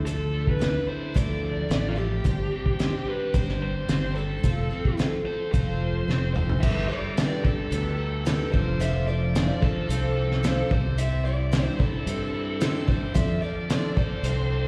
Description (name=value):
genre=folk rock and heartland rock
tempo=110 BPM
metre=4/4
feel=straight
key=unclear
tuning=A4 = 436 Hz
part: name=picked twelve-string acoustic guitar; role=accompaniment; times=0.0-14.7 s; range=D3 to D5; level=-35 LUFS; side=equal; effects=plate reverb, slapback echo
part: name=crunchy overdriven guitar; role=riff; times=0.0-14.7 s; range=G2 to A4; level=-36 LUFS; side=equal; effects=none
part: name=fingered electric bass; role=bass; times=0.0-14.7 s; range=F1 to G2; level=-29 LUFS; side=equal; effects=none
part: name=bluesy overdriven lead guitar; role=melody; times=0.1-14.7 s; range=F4 to E5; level=-35 LUFS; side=equal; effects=distortion, plate reverb, slapback echo, analog delay
part: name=cloth-damped thuddy drum kit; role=drums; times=0.1-14.4 s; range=crash cymbal, hi-hat, kick drum, snare drum, toms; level=-28 LUFS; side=equal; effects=none
part: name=tonewheel organ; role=sustained chords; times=6.6-14.7 s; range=A4 to D6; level=-48 LUFS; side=equal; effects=none
room=light reverb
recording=live gig heard through the venue's PA, recital hall reverb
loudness=-25 LUFS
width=mono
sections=0.0-6.6 A section; 6.6-14.7 B section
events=drum fill 6.1-6.6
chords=0.0 Dmadd9; 2.2 Gsus4; 4.4 F; 6.6 Gadd9; 8.5 F6; 10.7 Cadd9; 13.2 F6